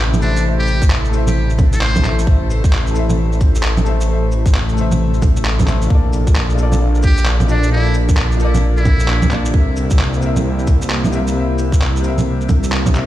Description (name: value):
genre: future garage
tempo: 132 BPM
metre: 4/4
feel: swing 62% on 16ths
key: A phrygian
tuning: A4 = 440 Hz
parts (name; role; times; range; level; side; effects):
- clear upright piano; accompaniment; 0.0-13.1 s; Bb2 to E5; -24 LUFS; left 5 dB; vintage 12-bit sampler grit, sidechain pumping, ping-pong delay
- warbly tape-like pad; sustained chords; 0.0-13.1 s; Bb2 to A4; -25 LUFS; equal; chorus, built-in reverb, sidechain pumping
- swelling detuned saw bass; bass; 0.0-13.1 s; A1 to C2; -16 LUFS; equal; sidechain pumping
- electronic bongos, shaker, cabasa and handclaps; drums; 0.1-13.1 s; none; -21 LUFS; right 2 dB; none
- trumpet with metal mute; melody; 0.2-2.2, 7.0-9.4 s; D4 to C5; -26 LUFS; equal; tape echo
- electronic kick drum; drums; 0.8-12.9 s; none; -13 LUFS; equal; none
room: digital ambience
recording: played on a big sound system in a bare room, stone room reverb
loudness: -13 LUFS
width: side -14 dB against mid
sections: 0.0-13.1 A section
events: none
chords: 0.0 Am; 5.9 Bbmaj7; 9.5 C7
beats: | 0.45 0.90 1.36 1.81 | 2.27 2.72 3.18 3.63 | 4.08 4.54 4.99 5.45 | 5.90 6.36 6.81 7.27 | 7.72 8.18 8.63 9.09 | 9.54 9.99 10.45 10.90 | 11.36 11.81 12.27 12.72